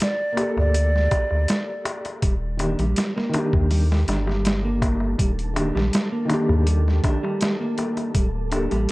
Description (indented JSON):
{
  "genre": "trip hop",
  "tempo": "81 BPM",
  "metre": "4/4",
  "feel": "straight",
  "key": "unclear",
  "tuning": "A4 = 441 Hz",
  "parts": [
    { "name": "mellow hollow jazz flute", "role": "melody", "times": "0.0-2.1 s", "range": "D5", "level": "-26 LUFS", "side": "right 1 dB", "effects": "tape echo" },
    { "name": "boom bap sampler-style drum kit", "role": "drums", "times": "0.0-8.9 s", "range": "hi-hat, kick drum, snare drum", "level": "-24 LUFS", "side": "equal", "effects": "overdrive" },
    { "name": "darbuka", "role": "percussion", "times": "0.0-8.9 s", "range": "none", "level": "-32 LUFS", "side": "left 2 dB", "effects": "none" },
    { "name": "felt-muted upright piano", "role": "accompaniment", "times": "0.3-8.7 s", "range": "Eb3 to A4", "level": "-28 LUFS", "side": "equal", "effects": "tremolo, tape echo" },
    { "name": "soft dub sub bass", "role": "bass", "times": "0.6-8.9 s", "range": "D1 to Eb2", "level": "-22 LUFS", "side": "equal", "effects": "none" },
    { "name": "mellow electric guitar", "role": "arpeggios", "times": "2.2-8.9 s", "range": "G3 to D4", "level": "-27 LUFS", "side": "right 1 dB", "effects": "vintage 12-bit sampler grit, tape echo" },
    { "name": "wind-like tuned noise texture", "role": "texture", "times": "3.7-8.9 s", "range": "A3 to A4", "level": "-37 LUFS", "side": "right 1 dB", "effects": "built-in reverb" }
  ],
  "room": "small room ambience",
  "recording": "worn, warbling old tape, cassette tape, warbly pitch drift",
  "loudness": "-20 LUFS",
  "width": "side -20 dB against mid",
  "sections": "0.0-8.9 A section",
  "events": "none",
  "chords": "0.0 Gmadd9/D; 2.2 Ebmaj7; 8.2 Gmadd9/D",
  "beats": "0.01 0.75 1.49 | 2.23 2.97 3.71 4.45 | 5.19 5.93 6.67 7.41 | 8.15 8.89"
}